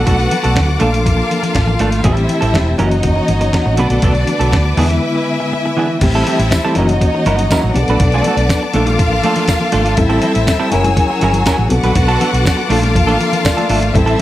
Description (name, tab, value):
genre	disco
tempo	121 BPM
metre	4/4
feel	straight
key	unclear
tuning	A4 = 440 Hz
part	warm symphonic violin section	second line	0.0-14.2 s	D4 to G#5	-19 LUFS	left 2 dB	none
part	clean electric guitar	accompaniment	0.0-14.2 s	E3 to B4	-20 LUFS	right 3 dB	none
part	mellow reed electric piano	accompaniment	0.0-14.2 s	D3 to E5	-19 LUFS	left 2 dB	fast tremolo
part	clear symphonic string section	sustained chords	0.0-14.2 s	Bb3 to E6	-22 LUFS	left 1 dB	none
part	hollow-body short-scale fingered electric bass	bass	0.0-14.1 s	E1 to E2	-16 LUFS	equal	none
part	dusty soul sampler-style drum kit	drums	0.1-14.2 s	crash cymbal, hi-hat, kick drum, snare drum	-18 LUFS	equal	none
part	congas	percussion	0.1-14.2 s	none	-25 LUFS	left 3 dB	none
part	tambourine	percussion	6.5-13.6 s	none	-29 LUFS	right 4 dB	none
room	light reverb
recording	none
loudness	-12 LUFS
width	side -14 dB against mid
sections	0.0-6.0 A section; 6.0-14.2 B section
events	break 5.0-6.0; reed electric piano fill 13.2-13.9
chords	0.0 Bm7; 0.8 Bbmaj7; 2.0 Am7; 2.8 F#7; 3.8 Bm7; 4.8 E7; 6.0 Am7; 6.8 F#7; 7.8 Bm7; 8.7 Bbmaj7; 10.0 Am7; 10.7 F#7; 11.7 Bm7; 12.7 Bbmaj7